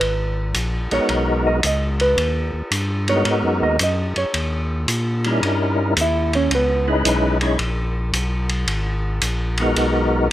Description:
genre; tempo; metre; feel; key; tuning
soul jazz organ trio; 111 BPM; 4/4; swing 67% on 8ths; G# minor; A4 = 440 Hz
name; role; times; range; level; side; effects
hollow-body jazz guitar; accompaniment; 0.0-6.9 s; B3 to E5; -22 LUFS; right 2 dB; none
tonewheel organ; bass; 0.0-10.3 s; G#1 to A#2; -22 LUFS; equal; slow rotary speaker
vintage drum kit; drums; 0.0-9.9 s; hi-hat, ride cymbal; -24 LUFS; equal; none
percussive tonewheel organ; melody; 0.9-10.3 s; G3 to C#5; -20 LUFS; left 1 dB; slow rotary speaker, overdrive, chorus vibrato
room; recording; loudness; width
light reverb, small room ambience; rough home demo mix; -17 LUFS; side -14 dB against mid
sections
0.0-10.3 A section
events
hollow-body jazz guitar solo 0.0-10.3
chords
0.0 G#m9; 4.3 D#7b9; 6.5 C#m9; 8.7 G#m9

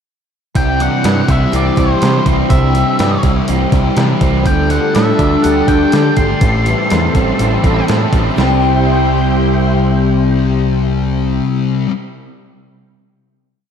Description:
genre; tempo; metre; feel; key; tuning
rock, shoegaze and dream pop; 123 BPM; 4/4; straight; C major; A4 = 440 Hz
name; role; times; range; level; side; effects
octave-fuzz lead guitar; melody; 0.6-7.8 s; C5 to C6; -20 LUFS; left 1 dB; distortion, ping-pong delay
picked twelve-string acoustic guitar; arpeggios; 0.6-11.9 s; E3 to G4; -20 LUFS; left 5 dB; ensemble chorus, ping-pong delay
overdriven semi-hollow guitar; riff; 0.6-11.9 s; A2 to A4; -19 LUFS; right 12 dB; reverse reverb
thick fuzz guitar; riff; 0.6-11.9 s; A2 to E4; -18 LUFS; left 8 dB; distortion, lush chorus
growling picked electric bass; bass; 0.6-11.4 s; Ab1 to D3; -16 LUFS; right 1 dB; overdrive
crisp 8-bit digital drum machine; drums; 0.6-8.5 s; hi-hat, kick drum, snare drum; -16 LUFS; right 1 dB; overdrive
analog string pad; sustained chords; 4.5-11.4 s; E4 to A5; -23 LUFS; right 2 dB; ensemble chorus
room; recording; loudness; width
moderate plate reverb, RT60 1.9 s; dreamy mix soaked in reverb; -11 LUFS; side -7 dB against mid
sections
0.6-8.4 verse; 8.4-12.3 final chord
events
none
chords
0.6 C; 4.5 Dsus4; 6.4 Am7; 8.4 C

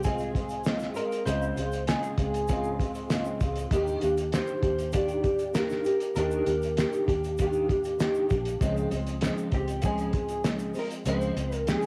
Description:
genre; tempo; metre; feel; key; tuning
indie pop, bedroom pop; 98 BPM; 4/4; straight; unclear; A4 = 440 Hz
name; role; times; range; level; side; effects
electric guitar through a small old amp; melody; 0.0-11.9 s; G4 to D5; -35 LUFS; equal; analog chorus, cassette tape
nylon-string guitar; accompaniment; 0.0-11.9 s; Db3 to G4; -31 LUFS; equal; ensemble chorus, warbly pitch drift, cassette tape
vintage muted fingered electric bass; bass; 0.0-11.7 s; Bb1 to Eb2; -37 LUFS; equal; none
cloth-damped thuddy drum kit; drums; 0.0-11.9 s; hi-hat, kick drum, snare drum; -33 LUFS; equal; cassette tape
tube shaker; percussion; 0.0-11.9 s; none; -55 LUFS; equal; none
room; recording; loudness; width
light reverb, small room ambience; home recording on cassette; -28 LUFS; mono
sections
0.0-11.9 A section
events
none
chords
0.0 Dbmaj7; 3.7 Ebmaj7; 8.6 Dbmaj7

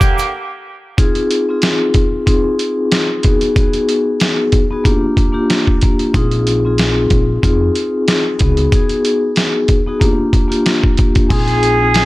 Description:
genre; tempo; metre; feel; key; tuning
hip hop, boom-bap hip-hop; 93 BPM; 4/4; swing 55% on 16ths; unclear; A4 = 439 Hz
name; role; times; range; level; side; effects
boom bap sampler-style drum kit; drums; 0.0-12.1 s; crash cymbal, hi-hat, kick drum, snare drum; -14 LUFS; equal; none
vibraphone with soft mallets; accompaniment; 1.0-12.1 s; Bb3 to Ab4; -15 LUFS; left 2 dB; cassette tape, high-pass filter, low-pass filter
upright bass; bass; 6.1-12.1 s; Bb1 to F2; -17 LUFS; equal; none
trumpet with plunger mute; melody; 11.3-12.1 s; Ab4; -14 LUFS; right 2 dB; high-pass filter, low-pass filter
room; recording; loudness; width
small room reverb; none; -12 LUFS; side -18 dB against mid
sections
1.0-11.3 A section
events
break 0.0-1.0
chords
0.0 Gm/D; 1.0 Ab6/C; 3.2 B6; 4.9 Bb6; 6.1 Bb9sus4; 8.4 Db9sus4; 10.0 Bb6; 11.3 Bb9sus4

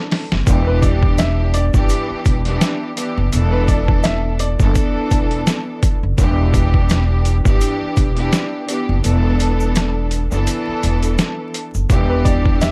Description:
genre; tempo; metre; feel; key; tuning
hip hop, boom-bap hip-hop; 84 BPM; 4/4; swing 56% on 16ths; E minor; A4 = 440 Hz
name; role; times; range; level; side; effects
clear symphonic string section; accompaniment; 0.0-12.7 s; E3 to A4; -24 LUFS; equal; high-pass filter, low-pass filter, plate reverb
boom bap sampler-style drum kit; drums; 0.1-12.7 s; hi-hat, kick drum, snare drum; -19 LUFS; equal; overdrive, vintage 12-bit sampler grit
upright bass; bass; 0.3-12.7 s; E1 to G1; -20 LUFS; equal; none
tube shaker; percussion; 0.5-12.7 s; none; -38 LUFS; equal; none
clear upright piano; melody; 0.7-6.1, 12.1-12.7 s; B4 to E5; -27 LUFS; equal; high-pass filter, low-pass filter, plate reverb, tape echo
room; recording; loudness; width
little or no reverb; vinyl crackle; -17 LUFS; mono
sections
0.5-12.7 A section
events
drum fill 0.0-0.5; kick muted 9.0-11.9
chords
0.5 Em7; 3.3 Bm7/E; 6.2 Em7; 9.0 Bm7/E; 11.9 Em7

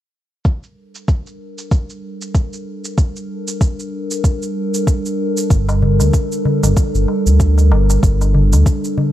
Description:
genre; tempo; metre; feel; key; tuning
organic downtempo; 95 BPM; 4/4; swing 57% on 16ths; G minor; A4 = 441 Hz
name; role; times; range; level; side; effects
warbly tape-like pad; sustained chords; 1.5-9.1 s; G3 to Bb4; -21 LUFS; right 1 dB; chorus, built-in reverb, sidechain pumping
electronic kick drum; drums; 0.5-8.8 s; none; -14 LUFS; equal; small room ambience
shaker; drums; 0.5-9.0 s; none; -28 LUFS; right 4 dB; low-pass filter on perc, small room ambience
smooth gliding synth bass; bass; 5.5-8.6 s; G1 to D2; -12 LUFS; equal; sidechain pumping
darbuka; percussion; 5.7-9.1 s; none; -21 LUFS; left 1 dB; none
room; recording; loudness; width
digital ambience; none; -14 LUFS; side -13 dB against mid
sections
0.5-9.1 A section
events
none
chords
0.5 Gmadd9

